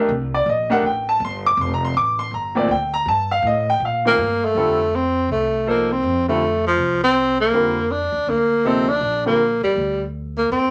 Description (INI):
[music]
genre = modal jazz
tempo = 161 BPM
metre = 4/4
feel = swing 63% on 8ths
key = unclear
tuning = A4 = 440 Hz
[part]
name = clear concert grand piano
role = accompaniment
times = 0.0-9.4 s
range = Bb2 to D6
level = -22 LUFS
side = equal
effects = none
[part]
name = upright bass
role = bass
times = 0.0-10.7 s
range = F1 to Bb2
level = -30 LUFS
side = equal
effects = none
[part]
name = breathy tenor saxophone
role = melody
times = 4.1-10.7 s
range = F3 to D4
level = -20 LUFS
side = equal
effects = none
[sound]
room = wet club reverb, RT60 0.5 s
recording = none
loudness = -19 LUFS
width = mono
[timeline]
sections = 0.0-4.6 A section; 4.6-10.7 B section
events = none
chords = 0.0 F9 (rootless); 1.6 Gm/F; 4.6 F; 7.5 Gm